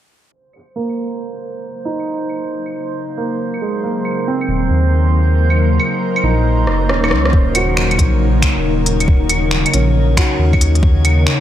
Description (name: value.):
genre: future garage.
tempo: 137 BPM.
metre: 4/4.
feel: swing 66% on 16ths.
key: Eb dorian.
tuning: A4 = 440 Hz.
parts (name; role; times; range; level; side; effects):
ethereal airy pad; sustained chords; 2.3-11.4 s; Db3 to Bb4; -21 LUFS; left 2 dB; ensemble chorus, built-in reverb, sidechain pumping.
drifting glass-harmonics texture; texture; 0.8-11.4 s; C5 to Db5; -26 LUFS; right 4 dB; chorus, built-in reverb.
organic electronic drum kit; drums; 0.5-11.4 s; claves, finger snaps, hi-hat, rim click; -20 LUFS; equal; none.
felt-muted upright piano; accompaniment; 0.8-11.4 s; Ab3 to Gb4; -22 LUFS; right 3 dB; sidechain pumping, low-pass filter, tape echo.
dark detuned saw bass; bass; 4.5-11.3 s; Eb1 to Eb2; -15 LUFS; equal; sidechain pumping.
electronic kick drum; drums; 7.3-10.9 s; none; -13 LUFS; equal; overdrive.
room: light reverb, digital ambience.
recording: low-pass filter.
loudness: -13 LUFS.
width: side -11 dB against mid.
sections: 0.3-7.3 A section; 7.3-11.4 B section.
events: fade-in on ambient pad 0.3-7.3; filter sweep on felt piano 0.3-7.3; filter sweep 0.3-7.3; drum fill 6.7-7.3.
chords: 0.3 Ebm7.